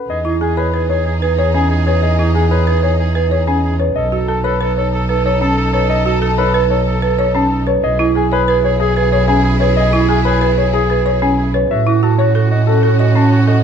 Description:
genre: classical, minimalist pattern music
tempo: 186 BPM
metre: 6/4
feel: straight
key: E major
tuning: A4 = 441 Hz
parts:
  - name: warm baby grand piano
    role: melody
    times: 0.0-13.6 s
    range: G#4 to A5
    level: -19 LUFS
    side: left 7 dB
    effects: none
  - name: clear oboe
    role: second line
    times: 0.1-13.6 s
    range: F#4 to A4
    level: -25 LUFS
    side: right 2 dB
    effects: none
  - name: clear symphonic string section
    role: sustained chords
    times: 0.1-13.6 s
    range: C#4 to A4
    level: -24 LUFS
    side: left 2 dB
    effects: none
  - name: clear double bass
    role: bass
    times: 0.1-13.6 s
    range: B1 to A2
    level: -16 LUFS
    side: right 2 dB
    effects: none
  - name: folk marimba with hard mallets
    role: arpeggios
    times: 0.2-13.6 s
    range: C#4 to C#5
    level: -18 LUFS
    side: right 5 dB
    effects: none
room: moderate large studio reverb, RT60 1.3 s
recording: dark, warm production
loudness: -12 LUFS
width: side -7 dB against mid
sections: 0.1-13.6 A section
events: none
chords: 0.1 Emaj7; 4.0 B7; 7.8 E/B; 11.7 A6

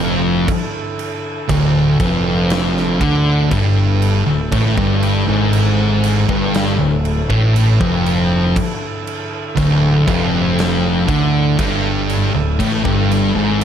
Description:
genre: stoner and doom metal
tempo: 59 BPM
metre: 4/4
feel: straight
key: D minor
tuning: A4 = 440 Hz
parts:
  - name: percussive tonewheel organ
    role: sustained chords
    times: 0.0-13.6 s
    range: D3 to A4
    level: -27 LUFS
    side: right 1 dB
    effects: slow rotary speaker, overdrive
  - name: thick fuzz guitar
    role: riff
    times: 0.0-13.6 s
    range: D2 to D3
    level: -17 LUFS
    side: left 6 dB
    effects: distortion
  - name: thick fuzz guitar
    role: riff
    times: 0.0-13.6 s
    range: D2 to D3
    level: -18 LUFS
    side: right 7 dB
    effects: distortion
  - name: overdriven fingered electric bass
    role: bass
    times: 0.0-13.6 s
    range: D1 to D2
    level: -21 LUFS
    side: equal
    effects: none
  - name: big rock drum kit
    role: drums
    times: 0.5-13.6 s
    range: crash cymbal, kick drum, snare drum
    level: -23 LUFS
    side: right 1 dB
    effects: none
room: small room ambience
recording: none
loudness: -13 LUFS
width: side -9 dB against mid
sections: 0.0-13.6 A section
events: none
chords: 0.0 Dm

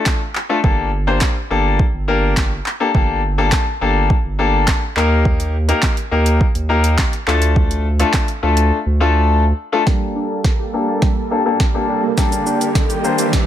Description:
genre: dance-pop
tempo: 104 BPM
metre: 4/4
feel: straight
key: G minor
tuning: A4 = 439 Hz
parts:
  - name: bright concert grand piano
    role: accompaniment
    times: 0.0-13.4 s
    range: A3 to C5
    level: -18 LUFS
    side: left 4 dB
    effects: sidechain pumping, low-pass filter
  - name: smooth R&B drum kit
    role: drums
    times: 0.1-13.5 s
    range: handclaps, hi-hat, kick drum, shaker, snare drum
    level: -17 LUFS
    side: right 1 dB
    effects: overdrive
  - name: saturated sub bass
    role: bass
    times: 0.6-9.5 s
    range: G1 to Eb2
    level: -17 LUFS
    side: right 1 dB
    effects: sidechain pumping
  - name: lush unison pad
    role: sustained chords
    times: 9.9-13.5 s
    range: G3 to A4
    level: -23 LUFS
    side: right 3 dB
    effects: chorus, sidechain pumping, low-pass filter
  - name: analog pluck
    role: arpeggios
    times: 9.9-13.5 s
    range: G3 to A4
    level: -26 LUFS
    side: right 5 dB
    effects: chorus, sidechain pumping, low-pass filter, tape echo
  - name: riser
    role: sound effects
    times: 11.3-13.5 s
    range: none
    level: -27 LUFS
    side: equal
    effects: none
room: digital ambience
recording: none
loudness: -14 LUFS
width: side -11 dB against mid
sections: 0.0-9.9 A section; 9.9-13.5 B section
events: silent gap 8.7-9.9; build-up 9.9-13.5; drum fill 9.9-13.5; riser 11.3-13.5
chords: 0.0 Dm; 0.6 Gmadd9; 5.0 Eb; 7.3 Dm; 9.9 Gmadd9

